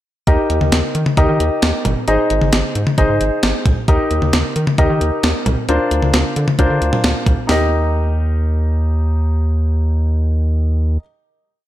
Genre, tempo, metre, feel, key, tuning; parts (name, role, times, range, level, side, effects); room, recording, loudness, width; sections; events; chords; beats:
synth-pop; 133 BPM; 4/4; straight; Eb major; A4 = 441 Hz
clear baby grand piano; accompaniment; 0.3-11.0 s; D4 to Eb5; -19 LUFS; left 1 dB
rubbery square bass; bass; 0.3-11.0 s; G1 to Eb3; -16 LUFS; equal
clean 12-bit digital drum machine; drums; 0.3-7.6 s; hi-hat, kick drum, snare drum, toms; -17 LUFS; equal; gated reverb
light reverb, digital ambience; -14 LUFS; side -14 dB against mid
0.3-7.5 verse; 7.5-11.1 final chord
0.3 Eb; 2.1 Ab; 3.9 Eb; 5.7 Bbadd9/D; 7.5 Eb
| 0.27 0.72 1.17 1.63 | 2.08 2.53 2.98 3.43 | 3.88 4.33 4.78 5.24 | 5.69 6.14 6.59 7.04 | 7.49 7.94 8.39 8.84 | 9.29 9.75 10.20 10.65